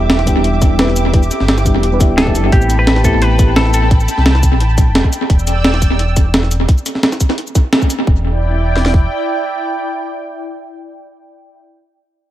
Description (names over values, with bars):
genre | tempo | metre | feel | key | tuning
liquid drum and bass | 173 BPM | 4/4 | straight | E minor | A4 = 440 Hz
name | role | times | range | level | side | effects
mellow FM electric piano | accompaniment | 0.0-3.9 s | G3 to B4 | -18 LUFS | left 2 dB | chorus, dub echo
lush unison pad | sustained chords | 0.0-11.6 s | E4 to E6 | -21 LUFS | right 1 dB | chorus, phaser, sidechain pumping
sub bass with octave | bass | 0.0-9.1 s | D1 to C2 | -14 LUFS | equal | none
breakbeat sampler-style drum kit | drums | 0.1-8.0 s | cabasa, hi-hat, snare drum | -17 LUFS | right 1 dB | analog delay
drum and bass drum kit | drums | 0.3-9.0 s | kick drum, snare drum | -12 LUFS | equal | none
semi-hollow electric guitar | melody | 2.2-3.9 s | G4 to B4 | -20 LUFS | equal | analog delay
room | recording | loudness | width
light reverb, digital ambience | echo-heavy mix | -11 LUFS | side -13 dB against mid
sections
0.0-8.1 A section; 8.1-10.8 B section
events
drop 0.0-8.1; band accent 7.7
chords
0.0 Em7; 2.5 Am9; 5.3 Em7